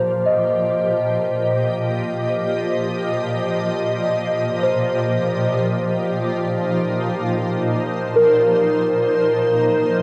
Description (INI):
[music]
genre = ambient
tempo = free time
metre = none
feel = none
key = unclear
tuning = A4 = 440 Hz
[part]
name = shimmering ambient pad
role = sustained chords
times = 0.0-10.0 s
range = Bb2 to Eb5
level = -23 LUFS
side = equal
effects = chorus, built-in reverb, cassette tape
[part]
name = muted felt-like synth keys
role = arpeggios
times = 0.0-10.0 s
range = Bb4 to Eb5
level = -22 LUFS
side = equal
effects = chorus, cassette tape, tape echo
[sound]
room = wet spring reverb, RT60 1.6 s, digital ambience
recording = home recording on cassette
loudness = -20 LUFS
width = mono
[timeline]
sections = 0.0-10.0 A section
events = none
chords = 0.0 F7sus4/Bb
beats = free time